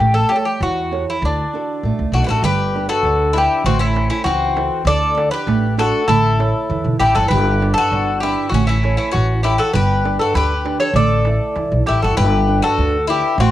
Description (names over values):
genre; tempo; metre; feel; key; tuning
greek folk, Greek bouzouki band; 99 BPM; 2/4; straight; unclear; A4 = 440 Hz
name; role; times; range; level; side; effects
Greek bouzouki; melody; 0.0-13.5 s; D4 to D5; -19 LUFS; left 1 dB; cassette tape
flamenco guitar; accompaniment; 0.0-13.5 s; D3 to F#5; -24 LUFS; right 8 dB; cassette tape
upright bass; bass; 0.0-13.5 s; G1 to E2; -18 LUFS; equal; none
Greek bouzouki; second line; 2.1-13.5 s; C4 to A4; -22 LUFS; left 6 dB; cassette tape
darbuka; percussion; 2.4-12.1 s; none; -26 LUFS; right 5 dB; none
room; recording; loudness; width
moderate studio reverb, RT60 0.6 s; home recording on cassette; -14 LUFS; side -13 dB against mid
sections
0.0-2.4 A section; 2.4-12.2 B section; 12.2-13.5 B section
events
drum fill 6.7-7.3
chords
0.0 A7; 1.2 D; 2.4 G; 3.6 Am; 4.9 D; 6.1 A; 7.3 G; 8.5 A; 9.7 G; 10.9 A; 12.2 G